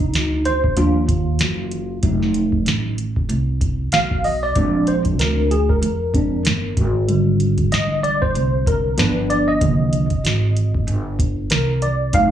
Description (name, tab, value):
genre	hip hop, jazz-hop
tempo	95 BPM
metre	4/4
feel	swing 57% on 16ths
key	unclear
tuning	A4 = 439 Hz
part	tine electric piano	accompaniment	0.0-12.3 s	D3 to F5	-20 LUFS	equal	ensemble chorus, slapback echo
part	upright bass	bass	0.0-12.3 s	F1 to F2	-20 LUFS	right 1 dB	none
part	booming analog drum machine	drums	0.0-12.3 s	hi-hat, kick drum, snare drum	-22 LUFS	equal	none
room	light reverb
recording	live gig heard through the venue's PA, club ambience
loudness	-16 LUFS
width	side -10 dB against mid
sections	0.0-12.3 A section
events	tine electric piano solo 0.0-12.3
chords	0.0 Cm11; 2.0 F7b9; 4.6 Bb7; 6.8 Abmaj9#11; 9.0 G7; 9.6 Cm11